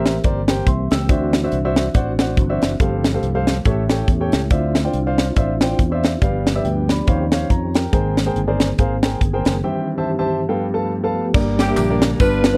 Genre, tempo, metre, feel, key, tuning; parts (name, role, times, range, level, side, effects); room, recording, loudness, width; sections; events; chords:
uptempo gospel; 140 BPM; 4/4; swing 58% on 8ths; A4 = 440 Hz
dark grand piano; accompaniment; 0.0-12.6 s; G2 to E6; -24 LUFS; equal
mellow tonewheel organ; sustained chords; 0.0-12.6 s; G2 to Ab4; -28 LUFS; equal; slow rotary speaker, chorus vibrato
fingered electric bass; bass; 0.0-12.6 s; F#1 to F2; -25 LUFS; equal
crisp fusion drum kit; drums; 0.1-12.5 s; crash cymbal, hi-hat, kick drum, ride cymbal, snare drum; -20 LUFS; equal
tambourine and handclaps; percussion; 11.3-12.5 s; -39 LUFS; equal
mellow saxophone section; melody; 11.6-12.6 s; Bb3 to B4; -23 LUFS; equal
little or no reverb; dry, close 1970s-style studio recording; -19 LUFS; mono
0.0-11.3 A section; 11.3-12.6 B section
break 9.6-11.3
0.0 C7; 1.1 D9; 2.8 G9sus4; 3.7 A7; 4.5 Dm9; 6.2 G7; 7.1 Eb13; 7.9 Abmaj9; 9.6 C/G; 10.5 G9; 11.3 Gm